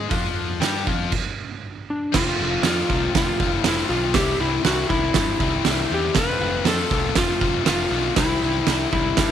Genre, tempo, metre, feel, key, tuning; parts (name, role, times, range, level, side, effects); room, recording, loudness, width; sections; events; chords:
garage rock duo or trio; 119 BPM; 4/4; straight; A4 = 440 Hz
biting overdriven guitar; riff; 0.0-9.3 s; C3 to G4; -26 LUFS; left 16 dB
fuzz picked electric bass; bass; 0.0-9.3 s; F1 to G2; -26 LUFS; left 1 dB; overdrive
combo organ; sustained chords; 0.1-9.3 s; C4 to F#5; -36 LUFS; right 11 dB
oversized low-tuned drum kit; drums; 0.1-9.3 s; crash cymbal, hi-hat, kick drum, snare drum; -23 LUFS; right 4 dB
electric slide guitar; melody; 1.9-9.3 s; D4 to B4; -24 LUFS; left 1 dB
studio ambience; 1960s-style stereo with parts hard left and right; -19 LUFS; side -9 dB against mid
0.0-2.1 A section; 2.1-9.3 B section
stop 1.1-2.1
0.0 D; 2.1 F; 4.1 C; 6.2 F; 8.2 C